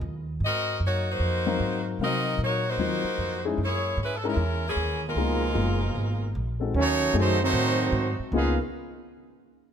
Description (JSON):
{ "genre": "jazz, big band swing", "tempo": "152 BPM", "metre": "4/4", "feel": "swing 66% on 8ths", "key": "unclear", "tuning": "A4 = 440 Hz", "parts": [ { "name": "edgy saxophone section", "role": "melody", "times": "0.0-6.4 s", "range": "Fb3 to Eb5", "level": "-28 LUFS", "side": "left 1 dB", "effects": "none" }, { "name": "upright bass", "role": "bass", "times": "0.0-8.6 s", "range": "Gb1 to C3", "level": "-28 LUFS", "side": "right 1 dB", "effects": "none" }, { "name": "dark grand piano", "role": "accompaniment", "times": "1.5-8.6 s", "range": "Gb3 to F5", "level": "-30 LUFS", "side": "left 6 dB", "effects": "none" }, { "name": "clear trombone section", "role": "second line", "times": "5.0-8.6 s", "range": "Cb3 to F4", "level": "-29 LUFS", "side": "right 3 dB", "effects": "none" }, { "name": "brilliant trumpet section", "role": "melody", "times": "6.8-8.6 s", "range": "A3 to F5", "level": "-26 LUFS", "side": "right 3 dB", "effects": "none" } ], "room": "light reverb", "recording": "close, detailed microphones", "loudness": "-24 LUFS", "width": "side -8 dB against mid", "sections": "0.0-6.7 A section; 6.7-8.3 B section; 8.3-9.7 C section", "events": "none", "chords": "0.4 Ab13; 3.6 Gb13; 5.2 Db13; 6.7 Ab7b9; 8.3 Db13", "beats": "0.02 | 0.41 0.81 1.21 1.60 | 2.00 2.39 2.79 3.19 | 3.58 3.98 4.38 4.77 | 5.17 5.56 5.96 6.35 | 6.75 7.14 7.54 7.93 | 8.33" }